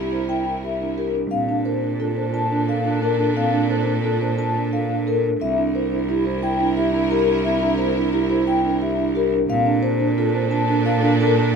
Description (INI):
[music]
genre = classical, minimalist pattern music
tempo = 176 BPM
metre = 6/4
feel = straight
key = C mixolydian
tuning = A4 = 440 Hz
[part]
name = vibraphone with soft mallets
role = melody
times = 0.0-11.4 s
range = G4 to A5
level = -24 LUFS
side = left 7 dB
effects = none
[part]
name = mellow clarinet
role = second line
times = 0.0-11.5 s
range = D4 to E4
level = -27 LUFS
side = right 4 dB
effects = none
[part]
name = rich studio string section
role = sustained chords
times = 0.0-11.6 s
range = D4 to Bb4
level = -30 LUFS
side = left 2 dB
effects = none
[part]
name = marimba with soft mallets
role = arpeggios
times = 0.0-11.6 s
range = C4 to C5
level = -23 LUFS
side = right 4 dB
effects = none
[part]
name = bright cello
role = bass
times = 0.0-11.6 s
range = C2 to Bb2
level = -24 LUFS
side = right 2 dB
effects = none
[sound]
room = light reverb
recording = minimal, uncompressed stereo recording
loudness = -18 LUFS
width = side -6 dB against mid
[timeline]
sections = 0.0-11.6 A section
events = none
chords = 0.0 C7; 1.3 Bbmaj7; 5.4 C7; 9.5 Bbmaj7